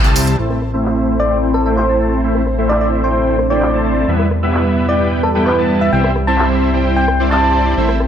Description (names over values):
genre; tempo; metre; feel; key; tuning
EDM, festival progressive house; 130 BPM; 4/4; straight; A minor; A4 = 445 Hz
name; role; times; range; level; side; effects
dense compressed supersaw; riff; 0.0-8.0 s; G3 to A5; -17 LUFS; right 1 dB; low-pass filter
fat analog bass; bass; 0.0-8.1 s; A1 to E2; -19 LUFS; equal; tube saturation
big-room dance drum kit; drums; 0.0-8.1 s; crash cymbal, handclaps, hi-hat, rim click, tambourine; -24 LUFS; equal; low-pass filter on snare, small room ambience, low-pass filter on hats, low-pass filter on perc, low-pass filter on cymbals
lush unison pad; sustained chords; 0.7-8.1 s; G3 to C5; -21 LUFS; equal; chorus, phaser
soft struck synth lead; melody; 1.2-7.8 s; A4 to A5; -18 LUFS; equal; chorus, digital delay
room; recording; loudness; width
moderate digital room reverb, RT60 1.2 s; none; -12 LUFS; side -9 dB against mid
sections
0.4-8.1 A section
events
band accent 0.0; filter sweep on supersaw synth 0.4-8.1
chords
0.4 Am; 4.1 Em; 5.9 C